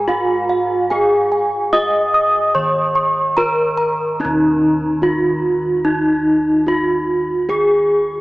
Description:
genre	Javanese gamelan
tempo	73 BPM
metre	4/4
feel	straight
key	Eb slendro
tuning	A4 = 440 Hz
part	gamelan-type bronze metallophone	melody	0.0-8.2 s	Eb4 to Eb5	-16 LUFS	equal	none
part	gamelan-type bronze metallophone	arpeggios	0.0-4.2 s	F5+40c to Eb6	-18 LUFS	right 1 dB	none
part	gamelan-type bossed gongs	bass	0.0-8.2 s	Eb2 to Ab4-20c	-22 LUFS	equal	none
room	wet cathedral reverb, RT60 5.5 s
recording	in a vast, echoing space, small speaker sound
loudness	-14 LUFS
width	side -19 dB against mid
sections	0.0-4.2 A section; 4.2-8.2 A section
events	none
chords	none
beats	0.09 | 0.91 1.73 2.55 3.38 | 4.20 5.02 5.84 6.66 | 7.49

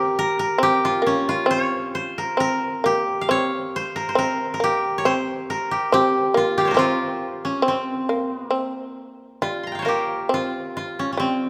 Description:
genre	japanese traditional, Japanese chamber music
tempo	68 BPM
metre	2/4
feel	rubato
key	C in sen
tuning	A4 = 440 Hz
part	koto	melody	0.0-11.5 s	C4 to C6	-24 LUFS	equal	none
part	shamisen	second line	0.0-11.5 s	G3 to C4	-26 LUFS	equal	none
room	moderate concert hall reverb, RT60 2.2 s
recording	none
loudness	-22 LUFS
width	mono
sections	0.0-9.4 A section; 9.4-11.5 B section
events	none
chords	none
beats	| 0.58 1.47 | 2.38 3.29 | 4.18 5.05 | 5.92 6.77 | 7.63 8.51 | 9.41 10.30 | 11.19

